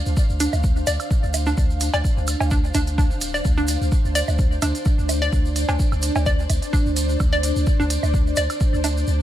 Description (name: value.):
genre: minimal techno.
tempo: 128 BPM.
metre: 4/4.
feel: swing 54% on 16ths.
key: D minor.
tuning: A4 = 440 Hz.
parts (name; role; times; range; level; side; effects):
ethereal airy pad; texture; 0.0-9.2 s; D4 to F5; -28 LUFS; equal; ensemble chorus, built-in reverb, tremolo, sidechain pumping.
punchy sub bass; bass; 0.1-9.2 s; D1 to D2; -23 LUFS; equal; sidechain pumping.
tube shaker; percussion; 0.1-9.2 s; none; -33 LUFS; right 2 dB; none.
electronic kick drum; drums; 0.2-8.7 s; none; -20 LUFS; equal; none.
hollow square pluck; riff; 0.4-8.9 s; D4 to D5; -26 LUFS; equal; chorus, sidechain pumping, dub echo.
electronic hi-hat; drums; 0.4-8.9 s; none; -28 LUFS; right 2 dB; none.
woodblock and cowbell; percussion; 0.5-8.9 s; none; -30 LUFS; right 6 dB; digital delay.
room: little or no reverb.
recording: none.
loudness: -18 LUFS.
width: side -12 dB against mid.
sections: 0.0-9.2 A section.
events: none.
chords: 0.0 Dm7.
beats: 0.17 0.64 1.11 | 1.57 2.04 2.51 2.98 | 3.45 3.92 4.39 4.86 | 5.33 5.79 6.26 6.73 | 7.20 7.67 8.14 8.61 | 9.07.